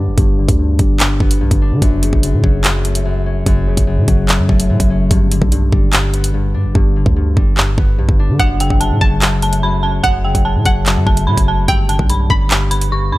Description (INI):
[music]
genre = hip hop, drill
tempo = 146 BPM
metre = 4/4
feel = half-time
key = F# phrygian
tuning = A4 = 440 Hz
[part]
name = concert harp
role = accompaniment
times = 0.0-13.2 s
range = F#2 to D4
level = -18 LUFS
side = left 3 dB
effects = low-pass filter
[part]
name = hard-hitting 808-style bass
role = bass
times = 0.0-13.2 s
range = F#1 to D3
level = -16 LUFS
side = equal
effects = none
[part]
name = drill drum kit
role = drums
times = 0.2-12.9 s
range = handclaps, hi-hat, kick drum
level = -15 LUFS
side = equal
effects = none
[part]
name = dark detuned synth bell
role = melody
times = 8.4-13.2 s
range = F#5 to C#6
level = -20 LUFS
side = right 2 dB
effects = chorus, tremolo, low-pass filter
[part]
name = string-like resonator pluck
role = second line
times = 8.4-13.2 s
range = F#5 to B5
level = -21 LUFS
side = equal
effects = chorus, analog delay
[sound]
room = little or no reverb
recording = dry, gritty hardware recording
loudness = -12 LUFS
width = side -18 dB against mid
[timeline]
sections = 0.0-13.2 A section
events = break 0.0-1.8; filter sweep 0.0-1.8; hi-hats muted 6.8-8.4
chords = 0.0 G; 1.8 F#m; 5.1 G; 8.4 F#m; 11.7 G